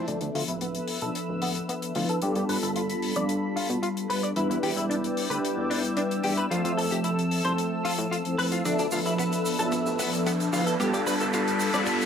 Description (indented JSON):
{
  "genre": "nu-disco, nu disco",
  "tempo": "112 BPM",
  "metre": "4/4",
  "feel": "straight",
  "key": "D dorian",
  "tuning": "A4 = 440 Hz",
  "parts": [
    { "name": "mellow synth brass", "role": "accompaniment", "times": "0.0-12.1 s", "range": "F3 to E5", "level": "-27 LUFS", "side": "equal", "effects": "chorus, vintage 12-bit sampler grit, slapback echo" },
    { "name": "lush unison pad", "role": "sustained chords", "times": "0.0-12.1 s", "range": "A4 to E6", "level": "-35 LUFS", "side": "right 1 dB", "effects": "chorus" },
    { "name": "swell and riser", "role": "sound effects", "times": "0.0-0.1, 9.5-12.1 s", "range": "none", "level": "-33 LUFS", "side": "right 1 dB", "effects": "none" },
    { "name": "direct-recorded clean electric guitar", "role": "riff", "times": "0.1-11.8 s", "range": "B3 to D5", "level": "-31 LUFS", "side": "left 1 dB", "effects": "ensemble chorus, low-pass filter" },
    { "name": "fat analog bass", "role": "bass", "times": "0.1-11.8 s", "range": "D1 to B2", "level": "-34 LUFS", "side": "equal", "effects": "high-pass filter" },
    { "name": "damped 70s drum kit", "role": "drums", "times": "0.1-12.1 s", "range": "hi-hat, shaker, toms", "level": "-34 LUFS", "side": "left 3 dB", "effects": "high-pass filter on hats, small room ambience, high-pass filter on toms, high-pass filter on snare, high-pass filter on perc, high-pass filter on room" }
  ],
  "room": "moderate plate reverb, RT60 1.4 s, small room ambience",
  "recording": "none",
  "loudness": "-24 LUFS",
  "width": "side -7 dB against mid",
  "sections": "0.1-12.1 A section",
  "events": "build-up 0.1-12.1; filter sweep on clean electric guitar 0.1-12.1; filter sweep on analog polysynth 0.1-12.1; drum fill 8.7-12.1; riser 9.5-12.1",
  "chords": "0.1 Dm69; 2.2 G9; 4.4 Em7; 6.5 Fmaj7; 8.7 Dm69; 10.8 G9"
}